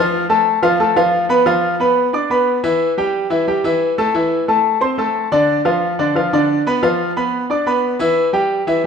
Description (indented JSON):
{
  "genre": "latin",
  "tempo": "179 BPM",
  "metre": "4/4",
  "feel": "straight",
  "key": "unclear",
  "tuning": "A4 = 440 Hz",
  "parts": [
    { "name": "bright grand piano", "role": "solo", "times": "0.0-8.9 s", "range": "D3 to D6", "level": "-14 LUFS", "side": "equal", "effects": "none" }
  ],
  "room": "wet large studio reverb, RT60 1.4 s",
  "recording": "minimal, uncompressed stereo recording",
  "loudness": "-14 LUFS",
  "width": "side -6 dB against mid",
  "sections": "0.0-8.9 A section",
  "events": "none",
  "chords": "0.0 F; 1.5 Dm69; 2.8 Emadd11; 4.1 Amadd11; 5.5 Dm6; 6.8 Dm69; 8.2 Em"
}